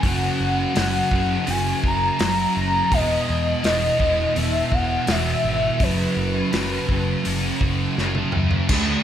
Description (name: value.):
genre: rock, shoegaze and dream pop.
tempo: 83 BPM.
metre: 4/4.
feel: straight.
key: unclear.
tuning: A4 = 439 Hz.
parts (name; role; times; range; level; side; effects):
warm velvety synth lead; melody; 0.0-8.0 s; B4 to A#5; -24 LUFS; left 1 dB; chorus, plate reverb, digital delay.
thick fuzz guitar; riff; 0.0-9.0 s; E2 to D4; -22 LUFS; right 1 dB; distortion, ensemble chorus.
vintage muted fingered electric bass; bass; 0.0-8.9 s; E1 to E2; -27 LUFS; equal; none.
loose indie drum kit; drums; 0.0-8.9 s; crash cymbal, hi-hat, kick drum, snare drum, toms; -25 LUFS; equal; none.
room: wet studio reverb, RT60 0.6 s.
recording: none.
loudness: -18 LUFS.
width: side -10 dB against mid.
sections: 0.0-8.7 A section.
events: drum fill 8.0-8.7.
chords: 0.0 F#; 2.9 Emaj7(no3); 5.8 F#sus4.